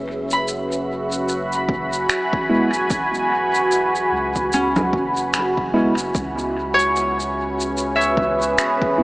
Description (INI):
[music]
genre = ambient dub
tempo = 74 BPM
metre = 4/4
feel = swing 59% on 16ths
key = unclear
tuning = A4 = 440 Hz
[part]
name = deep dark ambient pad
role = sustained chords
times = 0.0-9.0 s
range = C#4 to B5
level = -20 LUFS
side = equal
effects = chorus, built-in reverb
[part]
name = soft dub sub bass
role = bass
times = 0.0-9.0 s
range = E1 to C#2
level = -33 LUFS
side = equal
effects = none
[part]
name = Celtic harp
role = arpeggios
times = 0.3-9.0 s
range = C#4 to B5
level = -23 LUFS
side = equal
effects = dub echo
[part]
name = electronic shaker, finger snaps and congas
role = drums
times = 0.3-8.8 s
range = none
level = -25 LUFS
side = equal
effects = overdrive, dub echo
[part]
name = electronic kick drum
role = drums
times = 1.7-9.0 s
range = none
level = -26 LUFS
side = equal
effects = none
[part]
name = tine electric piano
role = stabs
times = 2.5-9.0 s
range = G#3 to E4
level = -22 LUFS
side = right 1 dB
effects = fast stereo tremolo, low-pass filter, dub echo
[sound]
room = moderate huge ambient reverb, RT60 9.4 s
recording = small speaker sound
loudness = -18 LUFS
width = side -21 dB against mid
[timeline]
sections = 0.0-9.0 A section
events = none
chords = 0.0 F#9sus4; 6.1 C#m7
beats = 0.47 1.28 2.09 | 2.90 3.71 4.53 5.34 | 6.15 6.96 7.77 8.58